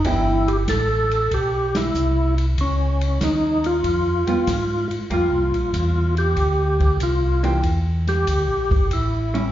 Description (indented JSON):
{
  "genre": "soul jazz organ trio",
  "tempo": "95 BPM",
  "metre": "4/4",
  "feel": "swing 69% on 8ths",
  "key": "C mixolydian",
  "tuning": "A4 = 440 Hz",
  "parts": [
    { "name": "overdriven tonewheel organ", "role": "melody", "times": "0.0-9.5 s", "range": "Db4 to A4", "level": "-22 LUFS", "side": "equal", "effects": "chorus vibrato, slow rotary speaker, slapback echo" },
    { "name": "vintage hollow-body jazz guitar", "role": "accompaniment", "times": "0.0-0.4, 4.3-9.5 s", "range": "E3 to G4", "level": "-25 LUFS", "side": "right 3 dB", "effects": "slapback echo" },
    { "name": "mellow tonewheel organ", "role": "bass", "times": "0.0-9.5 s", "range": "G1 to Ab2", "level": "-21 LUFS", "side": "equal", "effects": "slow rotary speaker" },
    { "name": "open jazz drum kit", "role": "drums", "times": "0.0-9.4 s", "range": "hi-hat, kick drum, ride cymbal, snare drum", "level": "-28 LUFS", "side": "equal", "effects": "none" }
  ],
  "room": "light reverb",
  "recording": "live gig heard through the venue's PA, club reverb, nothing above 7.5 kHz",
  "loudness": "-18 LUFS",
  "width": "side -12 dB against mid",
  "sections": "0.0-5.1 A section; 5.1-9.5 B section",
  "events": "band accent 1.6-1.9; tonewheel organ solo 5.1-9.5",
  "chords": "0.0 Em7; 2.6 Db; 5.1 C7sus4; 7.6 Em7b5; 8.9 A7",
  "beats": "| 0.04 0.68 1.31 1.94 | 2.57 3.21 3.84 4.47 | 5.10 5.74 6.37 7.01 | 7.64 8.28 8.91"
}